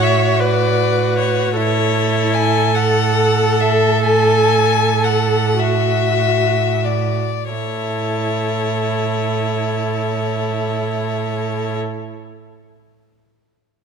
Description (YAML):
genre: classical, slow romantic movement for string quartet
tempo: 29-54 BPM (dotted quarters)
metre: 6/8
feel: rubato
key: A major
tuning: A4 = 440 Hz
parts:
  - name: clear violin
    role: melody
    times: 0.0-11.8 s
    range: C#5 to G#5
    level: -21 LUFS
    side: left 10 dB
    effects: none
  - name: warm violin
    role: second line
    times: 0.0-11.8 s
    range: E4 to A4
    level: -22 LUFS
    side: left 4 dB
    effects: none
  - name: clear viola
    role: accompaniment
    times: 0.0-11.8 s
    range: E4 to C#5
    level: -20 LUFS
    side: right 3 dB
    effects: none
  - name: clear cello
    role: bass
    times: 0.0-11.8 s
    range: A2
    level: -20 LUFS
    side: right 7 dB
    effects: none
room: moderate scoring stage reverb, RT60 2.1 s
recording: none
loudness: -15 LUFS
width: side -6 dB against mid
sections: 0.0-7.5 A section; 7.5-11.3 B section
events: slowing down 0.4-7.5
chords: 0.0 A69; 1.6 A; 4.1 F#m9/A; 7.5 A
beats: 0.40 | 1.56 2.74 | 4.05 5.59 | 7.51 9.38